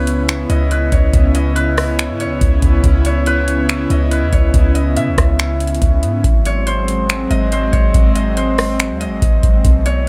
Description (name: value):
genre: hip hop, atmospheric cloud-rap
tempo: 141 BPM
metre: 4/4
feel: half-time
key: C# minor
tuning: A4 = 444 Hz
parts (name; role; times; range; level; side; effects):
- concert harp; melody; 0.0-10.1 s; B4 to E5; -24 LUFS; equal; delay
- airy breathy pad; sustained chords; 0.0-10.1 s; C#3 to E4; -22 LUFS; equal; chorus, sidechain pumping
- clean 808-style bass; bass; 0.0-10.1 s; G#1 to C#3; -19 LUFS; equal; none
- booming analog drum machine; drums; 0.1-10.0 s; finger snaps, hi-hat, kick drum, rim click; -18 LUFS; equal; none
room: digital ambience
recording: none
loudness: -15 LUFS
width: mono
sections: 0.0-10.1 A section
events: none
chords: 0.0 C#m7; 6.2 G#7